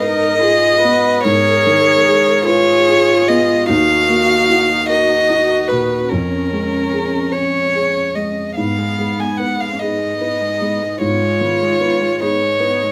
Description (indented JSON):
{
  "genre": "neoclassical piano and strings",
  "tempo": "49 BPM (dotted quarters)",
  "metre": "6/8",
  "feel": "rubato",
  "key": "G# dorian",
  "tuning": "A4 = 438 Hz",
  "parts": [
    { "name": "warm violin", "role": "melody", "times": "0.0-12.9 s", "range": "A#4 to G#5", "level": "-17 LUFS", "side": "equal", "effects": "none" },
    { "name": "dark cello", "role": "second line", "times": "0.0-12.9 s", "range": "B3 to G#4", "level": "-24 LUFS", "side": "equal", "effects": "none" },
    { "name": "dark viola", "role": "accompaniment", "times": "0.0-12.9 s", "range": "G#3 to B4", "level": "-25 LUFS", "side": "equal", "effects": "none" },
    { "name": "felt-muted upright piano", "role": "accompaniment", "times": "0.0-12.9 s", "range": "D#2 to B4", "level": "-23 LUFS", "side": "equal", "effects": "none" }
  ],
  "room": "moderate studio ambience, RT60 0.4 s",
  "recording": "band playing live in one room",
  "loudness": "-15 LUFS",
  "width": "mono",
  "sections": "0.0-12.9 A section",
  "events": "none",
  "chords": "0.0 G#m; 3.7 D#madd9; 6.1 C#6/E#; 8.6 G#m"
}